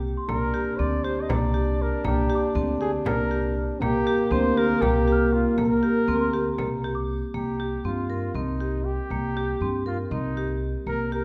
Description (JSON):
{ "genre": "contemporary instrumental, chamber music in an uneven meter", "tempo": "238 BPM (eighths)", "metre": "7/8", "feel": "straight", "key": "C minor", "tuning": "A4 = 440 Hz", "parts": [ { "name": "warm flugelhorn", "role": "melody", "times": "0.0-11.2 s", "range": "Eb4 to Eb5", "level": "-32 LUFS", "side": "equal", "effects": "none" }, { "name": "marimba with medium hard mallets", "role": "arpeggios", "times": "0.0-11.2 s", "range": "Bb3 to Bb4", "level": "-30 LUFS", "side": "equal", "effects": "none" }, { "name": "upright bass", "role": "bass", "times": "0.0-11.2 s", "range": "C2 to G2", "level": "-31 LUFS", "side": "equal", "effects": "none" }, { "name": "celesta", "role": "texture", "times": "0.2-7.5 s", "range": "C6 to F6", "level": "-38 LUFS", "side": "equal", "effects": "none" }, { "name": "mellow French horn", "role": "second line", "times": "0.3-7.1 s", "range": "Bb3 to D4", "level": "-29 LUFS", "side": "equal", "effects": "none" }, { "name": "frame drum", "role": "percussion", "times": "0.3-6.8 s", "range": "none", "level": "-36 LUFS", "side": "equal", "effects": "none" } ], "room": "wet recital hall reverb, RT60 1.5 s", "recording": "none", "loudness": "-25 LUFS", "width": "mono", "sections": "0.0-7.3 A section; 7.3-11.2 B section", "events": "none", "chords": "0.3 Gm/C; 7.3 Cm7" }